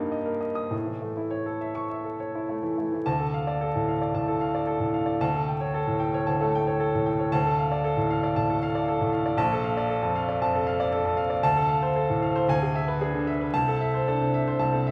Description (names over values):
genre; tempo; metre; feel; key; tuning
classical, virtuoso piano study; 98-119 BPM; 4/4; rubato; D minor, A minor from 11.4 s; A4 = 439 Hz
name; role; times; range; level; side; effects
clear baby grand piano; solo; 0.0-14.9 s; Bb1 to Eb6; -26 LUFS; equal; none
room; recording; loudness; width
wet recital hall reverb, RT60 1.5 s; recorded in a church or concert hall, vinyl crackle; -26 LUFS; mono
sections
0.0-3.1 A section; 3.1-14.9 B section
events
none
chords
0.0 Eb/G; 0.7 A; 3.1 Dm; 5.2 A7/D; 7.3 Dm; 9.4 Bbmaj7; 11.4 Dm7; 12.5 E7/D; 13.5 Am/C